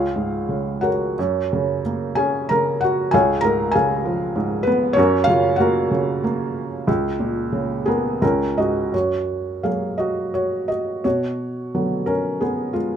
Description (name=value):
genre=classical, lyrical solo piano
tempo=84-98 BPM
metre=3/4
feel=rubato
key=F# major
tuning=A4 = 442 Hz
part: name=felt-muted upright piano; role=solo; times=0.0-13.0 s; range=C#2 to A#5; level=-18 LUFS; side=right 1 dB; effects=none
room=light reverb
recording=minimal, uncompressed stereo recording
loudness=-18 LUFS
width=side -8 dB against mid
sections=0.0-8.9 A section; 8.9-13.0 B section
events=none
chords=0.0 C#; 1.2 F#; 3.1 C#; 5.0 F#; 6.9 F#/C#; 8.2 C#5; 8.9 F#add9; 11.0 Bm